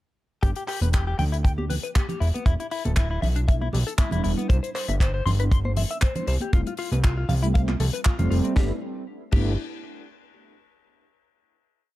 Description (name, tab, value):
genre	nu-disco, nu disco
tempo	118 BPM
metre	4/4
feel	swing 54% on 16ths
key	G mixolydian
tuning	A4 = 440 Hz
part	mellow synth brass	accompaniment	0.4-9.5 s	G3 to E4	-31 LUFS	right 1 dB	chorus, sidechain pumping, digital delay
part	direct-recorded clean electric guitar	riff	0.4-9.6 s	B3 to C6	-32 LUFS	left 4 dB	analog chorus, digital delay
part	fat analog bass	bass	0.4-9.6 s	D1 to D2	-24 LUFS	equal	none
part	kick drum	drums	0.4-9.4 s	none	-20 LUFS	equal	none
part	tight funk drum kit	drums	0.4-9.4 s	crash cymbal, handclaps, hi-hat, snare drum	-34 LUFS	left 2 dB	none
part	congas	percussion	0.8-8.5 s	none	-33 LUFS	right 2 dB	none
room	small room ambience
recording	dark, warm production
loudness	-21 LUFS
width	side -16 dB against mid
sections	0.4-8.6 groove; 8.6-10.6 final chord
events	filter sweep on analog polysynth 0.4-8.6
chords	0.4 G6; 2.2 Em7; 4.5 Cmaj7; 6.5 Fmaj7; 8.6 G6